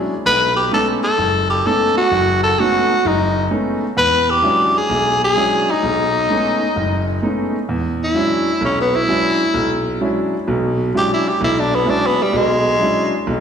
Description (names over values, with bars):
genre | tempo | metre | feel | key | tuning
blues | 129 BPM | 4/4 | swing 66% on 8ths | unclear | A4 = 441 Hz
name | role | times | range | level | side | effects
clear concert grand piano | accompaniment | 0.0-13.4 s | F#1 to E4 | -19 LUFS | equal | slapback echo
growling tenor saxophone | melody | 0.3-13.3 s | G3 to B4 | -16 LUFS | equal | slapback echo, tape echo
room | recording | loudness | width
moderate club reverb, RT60 0.7 s | live gig heard through the venue's PA, recital hall reverb | -14 LUFS | side -7 dB against mid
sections
0.0-7.7 A section; 7.7-13.4 B section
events
tenor saxophone solo 7.7-13.4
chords
0.3 B13; 4.0 E13; 5.8 B13; 7.7 E13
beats
| 0.26 0.73 1.19 1.66 | 2.12 2.58 3.05 3.51 | 3.98 4.44 4.91 5.37 | 5.83 6.30 6.76 7.23 | 7.69 8.16 8.62 9.09 | 9.55 10.02 10.48 10.95 | 11.41 11.87 12.34 12.80 | 13.27